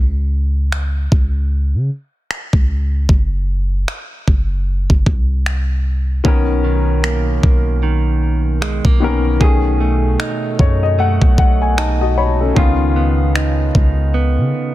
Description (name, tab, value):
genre	contemporary R&B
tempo	76 BPM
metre	4/4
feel	swing 58% on 16ths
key	B major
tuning	A4 = 441 Hz
part	warm 808-style bass	bass	0.0-14.5 s	F#1 to C#3	-16 LUFS	equal	none
part	smooth R&B drum kit	drums	0.7-14.0 s	finger snaps, kick drum	-15 LUFS	equal	overdrive, soft clipping on snare
part	warm baby grand piano	accompaniment	6.2-14.7 s	D#3 to B5	-20 LUFS	left 6 dB	none
part	direct-recorded clean electric guitar	arpeggios	6.2-14.7 s	B2 to G#4	-21 LUFS	right 6 dB	ping-pong delay
room	little or no reverb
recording	dense, heavily limited modern master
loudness	-13 LUFS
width	side -15 dB against mid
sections	0.0-14.7 A section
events	grand piano fill 10.2-12.6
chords	0.0 N.C.; 6.2 Bmaj9; 9.4 B13; 12.6 C#9